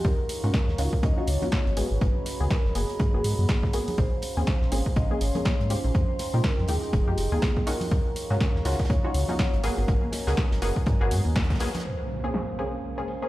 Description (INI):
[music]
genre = deep house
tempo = 122 BPM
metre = 4/4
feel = swing 58% on 16ths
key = Bb minor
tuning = A4 = 441 Hz
[part]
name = vibraphone with soft mallets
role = melody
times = 0.0-13.3 s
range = Ab4 to Eb5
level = -34 LUFS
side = equal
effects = vintage 12-bit sampler grit, tape echo
[part]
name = dark analog pad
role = sustained chords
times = 0.0-13.3 s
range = Ab3 to Db6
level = -40 LUFS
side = equal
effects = chorus, sidechain pumping
[part]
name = filtered dub chord stab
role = stabs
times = 0.0-13.3 s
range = Ab3 to Ab4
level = -33 LUFS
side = left 1 dB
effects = lush chorus, cassette tape, tape echo
[part]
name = sub bass with octave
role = bass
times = 0.0-11.6 s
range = F1 to Bb2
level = -26 LUFS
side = equal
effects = tube saturation, sidechain pumping
[part]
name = electronic kick drum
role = drums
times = 0.0-11.6 s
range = none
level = -25 LUFS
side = equal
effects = overdrive
[part]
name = modern studio drum kit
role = drums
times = 0.0-11.8 s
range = hi-hat, snare drum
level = -42 LUFS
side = right 2 dB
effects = sidechain pumping on hats, high-pass filter on hats, high-pass filter on snare, high-pass filter on room
[part]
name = deep dark ambient pad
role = texture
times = 0.0-13.3 s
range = Db4 to C6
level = -40 LUFS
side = right 2 dB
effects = chorus, built-in reverb, sidechain pumping
[part]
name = punchy analog drum machine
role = drums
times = 0.3-13.2 s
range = hi-hat, snare drum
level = -34 LUFS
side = equal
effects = overdrive, low-pass filter on hats, low-pass filter on snare
[part]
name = congas and bongos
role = percussion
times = 1.4-11.8 s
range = none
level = -36 LUFS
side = left 1 dB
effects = none
[part]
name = impact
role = sound effects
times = 11.8-13.3 s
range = none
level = -33 LUFS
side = equal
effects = none
[sound]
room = light reverb, small room ambience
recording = played on a big sound system in a bare room, stone room reverb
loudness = -23 LUFS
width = side -16 dB against mid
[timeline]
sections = 0.0-11.8 A section; 11.8-13.3 B section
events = filter sweep on synth stab 0.0-11.8; band accent 11.4; impact 11.8-13.3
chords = 0.0 Ebm9; 1.8 Abm9; 4.0 Bbm9; 5.9 Fm9; 7.9 Ebm9; 9.6 Abm9; 11.8 Bbm9